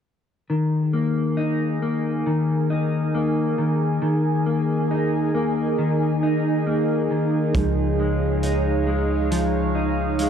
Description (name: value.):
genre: dream pop.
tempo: 68 BPM.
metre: 4/4.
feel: straight.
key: unclear.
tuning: A4 = 439 Hz.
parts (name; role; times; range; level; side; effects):
warbly tape-like pad; sustained chords; 1.2-10.3 s; Eb4 to Ab5; -25 LUFS; right 4 dB; chorus, built-in reverb, phaser.
mellow electric guitar; arpeggios; 0.5-10.3 s; Eb3 to Eb4; -22 LUFS; left 2 dB; analog chorus, analog delay.
plucky analog bass; bass; 7.5-10.3 s; Db2; -24 LUFS; right 2 dB; tube saturation.
loose indie drum kit; drums; 7.5-10.3 s; hi-hat, kick drum; -28 LUFS; right 1 dB; none.
room: light reverb.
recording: dry, gritty hardware recording.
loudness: -20 LUFS.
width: side -8 dB against mid.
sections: 0.5-10.3 A section.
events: none.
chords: 0.5 Absus2; 7.6 Dbadd9.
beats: | 0.49 1.37 2.26 3.14 | 4.02 4.90 5.79 6.67 | 7.55 8.43 9.31 10.20.